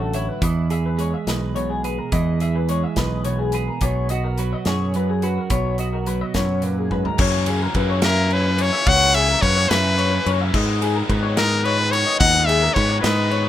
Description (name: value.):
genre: math rock and midwest emo.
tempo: 71 BPM (dotted quarters).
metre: 6/8.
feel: straight.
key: unclear.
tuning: A4 = 442 Hz.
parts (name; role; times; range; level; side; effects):
twelve-string electric guitar; accompaniment; 0.0-8.9 s; F#2 to B4; -26 LUFS; right 6 dB; none.
electric guitar through a small old amp; arpeggios; 0.0-13.5 s; G#4 to E5; -26 LUFS; left 7 dB; lush chorus.
growling fingered electric bass; bass; 0.0-13.5 s; A1 to G#2; -22 LUFS; equal; overdrive.
loose indie drum kit; drums; 0.1-13.4 s; crash cymbal, hi-hat, kick drum, ride cymbal, snare drum, toms; -25 LUFS; equal; none.
crunchy overdriven guitar; riff; 7.2-13.5 s; F#2 to D#4; -27 LUFS; equal; none.
brilliant trumpet; melody; 8.0-13.5 s; A#4 to F#5; -18 LUFS; left 2 dB; none.
room: small room ambience.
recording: rough home demo mix.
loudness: -17 LUFS.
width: side -12 dB against mid.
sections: 0.0-7.2 A section; 7.2-13.5 B section.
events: drum fill 6.9.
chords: 0.4 Emaj7; 3.8 B6; 7.2 F#7sus4; 10.5 G#m.